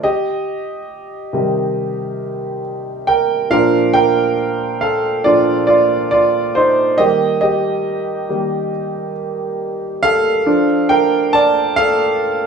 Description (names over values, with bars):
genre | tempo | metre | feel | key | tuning
pop | 69 BPM | 4/4 | straight | Bb major | A4 = 438 Hz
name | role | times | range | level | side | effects
clear grand piano | solo | 0.0-12.5 s | Bb2 to A5 | -14 LUFS | right 2 dB | none
room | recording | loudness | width
light reverb | band playing live in one room, small room reverb | -14 LUFS | side -6 dB against mid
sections
0.0-3.5 A section; 3.5-12.5 B section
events
grand piano solo 0.0-3.5, 3.5-12.5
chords
0.0 Cm; 3.5 Bb; 7.0 Eb; 10.5 Dm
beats
| 0.04 0.91 1.78 2.65 | 3.52 4.38 5.25 6.12 | 6.99 7.86 8.73 9.60 | 10.47 11.34 12.21